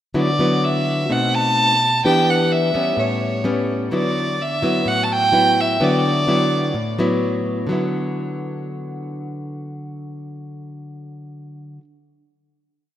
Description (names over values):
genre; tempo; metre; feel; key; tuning
bossa nova; 127 BPM; 4/4; straight; D major; A4 = 441 Hz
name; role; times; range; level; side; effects
nylon-string guitar; accompaniment; 0.1-11.8 s; A2 to G4; -20 LUFS; left 1 dB; none
warm violin; melody; 0.2-7.2 s; C#5 to A5; -19 LUFS; right 1 dB; none
room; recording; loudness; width
wet lush hall reverb, RT60 2.5 s; rough home demo mix; -16 LUFS; side -11 dB against mid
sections
0.2-7.7 A section; 7.7-11.5 final chord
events
none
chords
0.2 D69; 1.1 B7b9; 2.0 Em7; 3.0 A9; 3.9 D69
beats
| 0.16 0.63 1.10 1.57 | 2.04 2.51 2.98 3.45 | 3.92 4.39 4.86 5.33 | 5.80 6.28 6.75 7.22 | 7.69 8.16 8.63 9.10 | 9.57 10.04 10.52 10.99